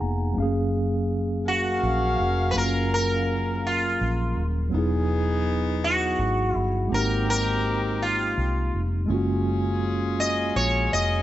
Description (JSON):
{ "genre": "slow six-eight R&B", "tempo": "55 BPM (dotted quarters)", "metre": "6/8", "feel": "straight", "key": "F# major", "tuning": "A4 = 439 Hz", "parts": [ { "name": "mellow tine electric piano", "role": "accompaniment", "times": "0.0-11.2 s", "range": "F#3 to A#5", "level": "-28 LUFS", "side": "right 1 dB", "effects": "fast stereo tremolo, plate reverb" }, { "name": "vintage muted fingered electric bass", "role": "bass", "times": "0.0-11.2 s", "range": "D#1 to B#1", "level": "-26 LUFS", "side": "equal", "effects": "none" }, { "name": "sitar", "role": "melody", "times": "1.5-11.2 s", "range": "E#4 to D#5", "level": "-25 LUFS", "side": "equal", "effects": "plate reverb" }, { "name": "warm horn section", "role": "stabs", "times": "1.5-11.2 s", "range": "B3 to E#5", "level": "-32 LUFS", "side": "left 3 dB", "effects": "none" } ], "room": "light reverb", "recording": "nothing above 7.9 kHz", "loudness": "-22 LUFS", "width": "side -13 dB against mid", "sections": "0.4-11.2 A section", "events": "tine electric piano fill 0.0-0.4", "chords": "0.4 F#maj9; 4.7 Emaj9; 6.9 G#maj9; 9.1 F#maj9", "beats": "| 0.36 1.45 | 2.54 3.63 | 4.72 5.81 | 6.90 8.00 | 9.09 10.18" }